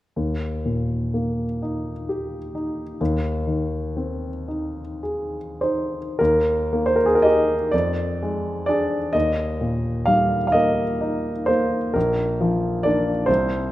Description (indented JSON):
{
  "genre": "classical, romantic nocturne for solo piano",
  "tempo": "32-46 BPM (dotted quarters)",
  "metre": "6/8",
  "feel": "rubato",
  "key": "Eb major",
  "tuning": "A4 = 440 Hz",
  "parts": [
    { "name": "warm baby grand piano", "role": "solo", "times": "0.2-13.7 s", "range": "Bb1 to F5", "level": "-20 LUFS", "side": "equal", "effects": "none" }
  ],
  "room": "moderate recital hall reverb, RT60 1.6 s",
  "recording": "none",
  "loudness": "-20 LUFS",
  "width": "side -15 dB against mid",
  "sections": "0.2-6.2 A section; 6.2-13.7 B section",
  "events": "none",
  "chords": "0.2 Eb; 3.0 Ab/Eb; 6.2 Eb; 7.7 Ddim/F; 9.1 Eb; 12.0 Bb",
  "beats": "| 0.17 1.63 | 3.00 4.48 | 6.19 7.73 | 9.15 10.54 | 11.95 13.29"
}